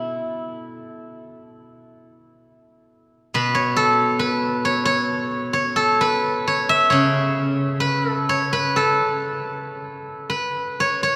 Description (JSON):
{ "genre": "chinese traditional, Chinese solo plucked strings", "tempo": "60-68 BPM", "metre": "4/4", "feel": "rubato", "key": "A gong mode", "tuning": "A4 = 436 Hz", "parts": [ { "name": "steel-string zither", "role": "solo", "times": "0.0-11.2 s", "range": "B2 to E5", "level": "-21 LUFS", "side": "equal", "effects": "none" } ], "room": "wet cathedral reverb, RT60 5.2 s", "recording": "recorded in a church or concert hall", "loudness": "-21 LUFS", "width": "mono", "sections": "0.0-10.8 A section", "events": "none", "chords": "none", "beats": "0.63 1.56 2.47 | 3.35 4.24 5.13 6.03 | 6.93 7.84 8.78 9.76 | 10.75" }